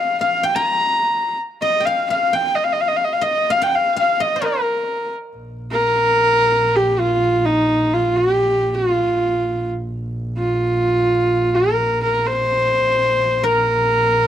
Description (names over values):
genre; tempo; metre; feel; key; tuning
mongolian traditional, Mongolian folk; 128 BPM; 4/4; straight; Bb zhi mode; A4 = 440 Hz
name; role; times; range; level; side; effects
bright horsehead fiddle; melody; 0.0-14.3 s; Eb4 to Bb5; -16 LUFS; equal; none
guzheng; second line; 0.0-6.5, 13.4-14.3 s; Bb4 to Bb5; -26 LUFS; left 4 dB; none
muted double bass; drone; 5.4-14.3 s; Bb1; -25 LUFS; right 1 dB; none
room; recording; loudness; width
light reverb, small room ambience; dry, close 1970s-style studio recording; -16 LUFS; side -10 dB against mid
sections
0.0-5.4 A section; 5.4-14.3 B section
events
none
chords
none